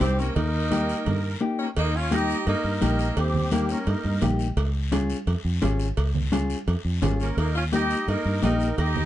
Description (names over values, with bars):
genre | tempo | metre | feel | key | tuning
latin, cumbia | 171 BPM | 4/4 | straight | unclear | A4 = 439 Hz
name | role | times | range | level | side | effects
warm saxophone section | melody | 0.0-4.2, 7.2-9.1 s | G3 to G4 | -28 LUFS | equal | none
musette accordion | second line | 0.0-4.2, 7.2-9.1 s | G4 to Eb5 | -33 LUFS | right 3 dB | none
mellow electric guitar | accompaniment | 0.0-8.7 s | Bb3 to Ab4 | -27 LUFS | left 4 dB | none
fingered electric bass | bass | 0.0-9.1 s | Ab1 to G2 | -25 LUFS | equal | none
congas | percussion | 0.0-9.1 s | none | -31 LUFS | right 3 dB | none
cowbell and timbales | percussion | 0.0-9.0 s | none | -36 LUFS | right 4 dB | none
guiro | percussion | 0.0-9.1 s | none | -41 LUFS | left 6 dB | none
room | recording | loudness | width
light reverb | dark, warm production, nothing above 10.5 kHz | -22 LUFS | side -13 dB against mid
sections
0.0-1.8 A section; 1.8-9.1 B section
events
none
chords
0.4 Eb; 4.6 Db; 7.4 Eb